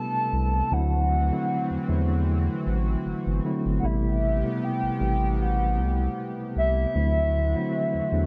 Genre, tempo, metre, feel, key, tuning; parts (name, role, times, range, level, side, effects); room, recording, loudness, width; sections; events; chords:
R&B; 77 BPM; 4/4; swing 54% on 16ths; A dorian; A4 = 435 Hz
hollow clarinet-like synth lead; melody; 0.0-8.3 s; E5 to A5; -31 LUFS; equal; chorus, digital delay
mellow tine electric piano; accompaniment; 0.0-8.3 s; C3 to E4; -30 LUFS; equal
chorused pulse-width pad; sustained chords; 0.0-8.3 s; C3 to A4; -38 LUFS; equal
saturated sub bass; bass; 0.3-8.3 s; G1 to E2; -27 LUFS; equal
digital ambience; -25 LUFS; mono
0.0-8.3 A section
0.0 Am9; 0.7 D9; 3.8 Am9; 7.0 D9